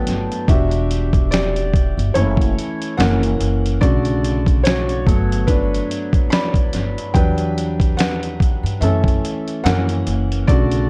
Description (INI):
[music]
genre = lo-fi hip hop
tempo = 72 BPM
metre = 4/4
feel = swing 56% on 16ths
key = E dorian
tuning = A4 = 436 Hz
[part]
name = felt-muted upright piano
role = accompaniment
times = 0.0-10.9 s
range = C#3 to B5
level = -23 LUFS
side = equal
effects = none
[part]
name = upright bass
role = bass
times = 0.1-10.9 s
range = E1 to G2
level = -22 LUFS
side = equal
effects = none
[part]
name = dusty soul sampler-style drum kit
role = drums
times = 0.1-10.9 s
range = finger snaps, hi-hat, kick drum, snare drum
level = -21 LUFS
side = equal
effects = none
[sound]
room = light reverb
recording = dark, warm production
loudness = -18 LUFS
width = mono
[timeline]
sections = 0.0-10.9 A section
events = felt piano solo 0.0-10.9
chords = 0.5 Em7; 2.1 F#m7; 3.0 F#7; 3.8 Bm7; 5.1 Gmaj7; 7.1 Em7; 8.8 F#m7; 9.6 F#7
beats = | 0.48 1.31 2.15 2.98 | 3.81 4.65 5.48 6.32 | 7.15 7.98 8.81 9.65 | 10.48